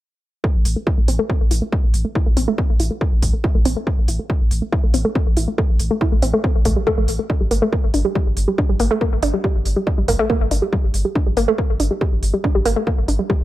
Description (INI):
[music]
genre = driving peak-time techno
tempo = 140 BPM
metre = 4/4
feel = straight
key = A phrygian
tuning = A4 = 439 Hz
[part]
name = analog pluck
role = riff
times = 0.4-13.4 s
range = G3 to E4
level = -21 LUFS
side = equal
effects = chorus, tube saturation, sidechain pumping, ping-pong delay
[part]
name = electronic kick drum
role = drums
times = 0.4-13.4 s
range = none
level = -19 LUFS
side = equal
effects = none
[part]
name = saturated sub bass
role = bass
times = 0.5-13.4 s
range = G1 to A1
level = -21 LUFS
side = equal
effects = sidechain pumping, low-pass filter
[part]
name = electronic hi-hat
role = drums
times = 0.7-13.2 s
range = none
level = -28 LUFS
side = right 2 dB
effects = none
[sound]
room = little or no reverb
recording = none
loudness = -16 LUFS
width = side -15 dB against mid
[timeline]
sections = 0.4-13.4 A section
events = filter sweep on synth arpeggio sound 0.4-13.4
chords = 0.4 Am; 7.3 Gm